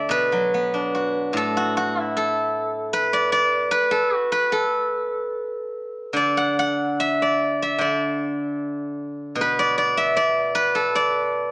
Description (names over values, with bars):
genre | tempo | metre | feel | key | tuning
chinese traditional, Chinese solo plucked strings | 75 BPM | 2/4 | uneven beats, rubato | D gong mode | A4 = 435 Hz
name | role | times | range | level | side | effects
steel-string zither | solo | 0.0-11.5 s | A2 to F#5 | -19 LUFS | equal | none
room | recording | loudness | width
moderate recital hall reverb, RT60 1.4 s | small speaker sound | -19 LUFS | side -26 dB against mid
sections
0.0-11.5 A section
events
none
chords
none